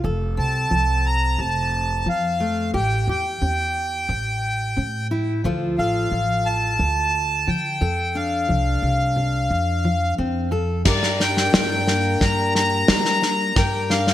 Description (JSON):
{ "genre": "indie folk with a building arrangement", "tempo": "89 BPM", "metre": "4/4", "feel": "straight", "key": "unclear", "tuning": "A4 = 436 Hz", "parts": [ { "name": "fingerpicked steel-string acoustic guitar", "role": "accompaniment", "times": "0.0-14.1 s", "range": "F2 to Bb4", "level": "-27 LUFS", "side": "left 2 dB", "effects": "none" }, { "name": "upright bass", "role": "bass", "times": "0.0-14.1 s", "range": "F1 to G3", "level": "-24 LUFS", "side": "right 1 dB", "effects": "none" }, { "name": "accordion", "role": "melody", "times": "0.4-14.1 s", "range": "D5 to Bb5", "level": "-23 LUFS", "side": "left 1 dB", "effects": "digital delay" }, { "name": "picked twelve-string acoustic guitar", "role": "accompaniment", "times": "10.9-14.1 s", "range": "G3 to Bb4", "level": "-29 LUFS", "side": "left 5 dB", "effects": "none" }, { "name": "loose indie drum kit", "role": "drums", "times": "10.9-14.1 s", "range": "crash cymbal, kick drum, snare drum", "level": "-20 LUFS", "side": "equal", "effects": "gated reverb" } ], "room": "light reverb, small room ambience", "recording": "bright 1980s-style digital production", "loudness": "-19 LUFS", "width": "side -12 dB against mid", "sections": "0.0-10.9 A section; 10.9-14.1 B section", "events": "none", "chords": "0.0 F; 2.7 A7; 5.4 Dm; 7.8 F6; 10.9 Gm" }